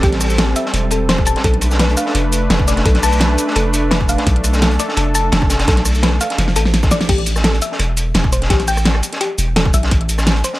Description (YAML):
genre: liquid drum and bass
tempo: 170 BPM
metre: 4/4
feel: straight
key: A minor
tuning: A4 = 439 Hz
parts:
  - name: warm analog pad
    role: sustained chords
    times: 0.0-7.1 s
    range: G3 to B4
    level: -21 LUFS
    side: equal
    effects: chorus, sidechain pumping
  - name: thumb-piano-like synth pluck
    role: arpeggios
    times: 0.0-10.5 s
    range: G4 to A5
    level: -22 LUFS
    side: left 2 dB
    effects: chorus, dub echo
  - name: long sustained 808-style bass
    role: bass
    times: 0.0-10.4 s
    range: E1 to B1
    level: -17 LUFS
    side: equal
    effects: none
  - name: crunchy breakbeat drum kit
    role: drums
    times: 0.0-10.6 s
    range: hi-hat, snare drum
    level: -22 LUFS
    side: equal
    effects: high-pass filter on hats, high-pass filter on snare, high-pass filter on room
  - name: electronic kick drum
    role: drums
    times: 0.0-10.0 s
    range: none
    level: -17 LUFS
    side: equal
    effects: none
  - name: pop drum kit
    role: drums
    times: 0.0-10.5 s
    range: cabasa, crash cymbal, hi-hat, rim click, snare drum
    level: -19 LUFS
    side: equal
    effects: none
room: light reverb, digital ambience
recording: none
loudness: -13 LUFS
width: side -17 dB against mid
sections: 0.0-7.1 A section; 7.1-10.6 A section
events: drop 0.0-7.1, 7.1-10.6; drum fill 6.4-7.1; band accent 7.0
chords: 0.0 Am7; 1.4 Bm7b5; 7.1 A7(no3)